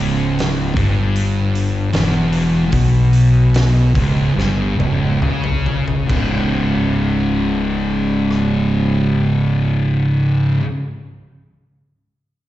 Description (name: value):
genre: stoner and doom metal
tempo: 68-78 BPM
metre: 4/4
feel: straight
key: C# minor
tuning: A4 = 439 Hz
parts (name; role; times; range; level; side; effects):
- thick fuzz guitar; riff; 0.0-10.6 s; C#2 to C#3; -18 LUFS; left 4 dB; distortion, slapback echo
- thick fuzz guitar; riff; 0.0-10.6 s; C#2 to C#3; -19 LUFS; right 4 dB; distortion
- fuzz fingered electric bass; bass; 0.0-10.6 s; C#1 to C#2; -20 LUFS; equal; overdrive
- oversized low-tuned drum kit; drums; 0.0-8.5 s; crash cymbal, hi-hat, kick drum, rim click, snare drum, toms; -24 LUFS; equal; none
room: moderate club reverb, RT60 0.8 s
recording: live gig heard through the venue's PA, recital hall reverb, nothing above 8.0 kHz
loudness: -14 LUFS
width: side -14 dB against mid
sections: 0.0-6.1 A section; 6.1-9.6 B section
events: slowing down 0.0-6.1; drum fill 4.4-6.1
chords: 0.0 C#m; 6.1 C#5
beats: 0.37 1.15 1.93 | 2.73 3.54 4.37 5.22 | 6.09 6.97 7.86 8.74